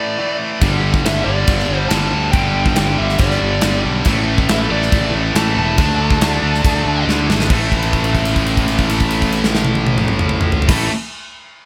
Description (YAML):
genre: hard rock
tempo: 139 BPM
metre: 4/4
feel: straight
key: unclear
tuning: A4 = 440 Hz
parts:
  - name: biting lead guitar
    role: melody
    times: 0.0-7.0 s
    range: D5 to A5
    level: -25 LUFS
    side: equal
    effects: overdrive, tape echo
  - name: tight distorted guitar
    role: riff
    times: 0.0-10.9 s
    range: G2 to D4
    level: -24 LUFS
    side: equal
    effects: distortion
  - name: distorted electric guitar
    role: riff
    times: 0.6-10.9 s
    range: G2 to D4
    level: -27 LUFS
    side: equal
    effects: none
  - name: scooped high-gain guitar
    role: riff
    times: 0.6-10.9 s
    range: G2 to D4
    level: -25 LUFS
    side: equal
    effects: distortion
  - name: fuzz fingered electric bass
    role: bass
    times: 0.6-10.9 s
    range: E1 to D2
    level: -22 LUFS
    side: equal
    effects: overdrive
  - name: gated 80s drum kit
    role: drums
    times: 0.6-10.8 s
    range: crash cymbal, kick drum, snare drum, toms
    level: -21 LUFS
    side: equal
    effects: none
room: light reverb, small room ambience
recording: none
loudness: -16 LUFS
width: mono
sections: 0.0-7.5 A section; 7.5-11.0 B section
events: drum fill 7.1-7.5; held note 7.5-10.7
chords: 0.0 A5; 0.6 G5; 4.1 A5; 5.8 D5; 7.5 A5